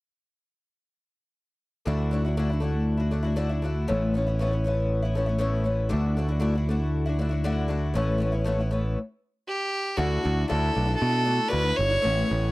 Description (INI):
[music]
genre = rock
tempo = 118 BPM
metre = 4/4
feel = straight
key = D major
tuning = A4 = 440 Hz
[part]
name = picked twelve-string acoustic guitar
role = accompaniment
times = 1.9-12.5 s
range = A2 to F#4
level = -28 LUFS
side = left 2 dB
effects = none
[part]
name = picked electric bass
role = bass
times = 1.9-12.5 s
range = G1 to B2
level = -25 LUFS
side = right 1 dB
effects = none
[part]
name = bright fiddle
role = melody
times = 9.5-12.5 s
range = F#4 to C#5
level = -26 LUFS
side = right 1 dB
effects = none
[sound]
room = little or no reverb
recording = dry, close 1970s-style studio recording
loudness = -23 LUFS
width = side -19 dB against mid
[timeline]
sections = 1.9-10.0 A section; 10.0-12.5 B section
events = stop 9.0-10.0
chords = 1.9 Dadd9; 3.9 Aadd9; 5.9 Dadd9; 8.0 Aadd9; 10.0 Dadd9